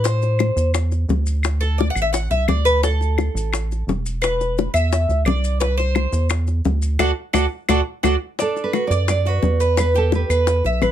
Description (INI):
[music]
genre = latin, Cuban son and guajira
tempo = 173 BPM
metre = 4/4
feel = straight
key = unclear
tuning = A4 = 440 Hz
[part]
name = Cuban tres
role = arpeggios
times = 0.0-10.9 s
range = D4 to F#5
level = -22 LUFS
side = equal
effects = none
[part]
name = rubbery square bass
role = bass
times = 0.0-10.9 s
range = E1 to A2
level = -19 LUFS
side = right 1 dB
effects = none
[part]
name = maracas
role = percussion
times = 0.0-10.9 s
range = none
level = -32 LUFS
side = left 3 dB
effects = none
[part]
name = bongos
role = percussion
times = 0.1-10.9 s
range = none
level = -24 LUFS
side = left 7 dB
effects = none
[part]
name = claves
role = percussion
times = 0.4-10.9 s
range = none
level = -28 LUFS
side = left 3 dB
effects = none
[part]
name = nylon-string guitar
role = melody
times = 8.4-10.9 s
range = A4 to D5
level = -21 LUFS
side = right 4 dB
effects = none
[sound]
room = light reverb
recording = close, detailed microphones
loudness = -17 LUFS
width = side -10 dB against mid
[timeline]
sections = 0.0-8.4 A section; 8.4-10.9 B section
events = Cuban tres solo 0.0-8.4; band accent 7.0-8.4; drum fill 7.5-8.4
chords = 0.1 Am; 1.4 D5; 4.2 E5; 5.6 C; 7.0 D; 8.4 Bm; 9.8 Em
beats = | 0.05 0.40 0.74 1.09 | 1.44 1.79 2.13 2.48 | 2.83 3.18 3.52 3.87 | 4.22 4.57 4.91 5.26 | 5.61 5.95 6.30 6.65 | 7.00 7.34 7.69 8.04 | 8.38 8.73 9.08 9.43 | 9.78 10.12 10.47 10.82